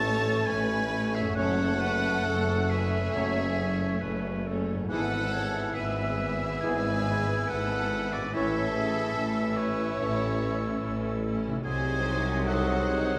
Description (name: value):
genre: classical, slow romantic movement for symphony orchestra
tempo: 66-74 BPM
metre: 4/4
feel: rubato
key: A major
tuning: A4 = 439 Hz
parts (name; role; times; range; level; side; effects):
- rich studio violin section; melody; 0.0-13.2 s; E4 to C#5; -42 LUFS; equal; none
- bright clarinet; second line; 0.0-13.2 s; F#4 to C#5; -40 LUFS; equal; none
- bright silver concert flute; second line; 0.0-13.2 s; C#6 to E6; -42 LUFS; equal; none
- clear oboe; second line; 0.0-13.2 s; C#5 to A5; -35 LUFS; equal; none
- rich studio violin section; second line; 0.0-13.2 s; C#5 to A5; -44 LUFS; equal; none
- rich studio viola section; accompaniment; 0.0-13.2 s; A3 to G#4; -40 LUFS; equal; none
- warm bassoon; accompaniment; 0.0-13.2 s; E3 to A3; -38 LUFS; equal; none
- concert harp; arpeggios; 0.0-13.2 s; F#2 to E5; -44 LUFS; equal; none
- clear tuba; bass; 0.0-13.2 s; F#1 to B#1; -39 LUFS; equal; none
- rich studio cello section; bass; 0.0-13.2 s; F#2 to B#2; -36 LUFS; equal; none
- rich studio double bass section; bass; 0.0-13.2 s; F#1 to B#1; -36 LUFS; equal; none
- bright trombone section; sustained chords; 1.4-13.2 s; F#2 to F#3; -42 LUFS; equal; none
- mellow French horn section; sustained chords; 1.4-13.2 s; A3 to E4; -38 LUFS; equal; none
- dark trumpet section; stabs; 1.4-13.2 s; G#4 to D#5; -42 LUFS; equal; none
room: wet scoring stage reverb, RT60 1.8 s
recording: none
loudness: -28 LUFS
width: mono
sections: 0.0-13.2 A section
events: none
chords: 0.0 A; 1.4 F#m7; 4.9 E/G#; 8.3 A; 11.6 G#7/B#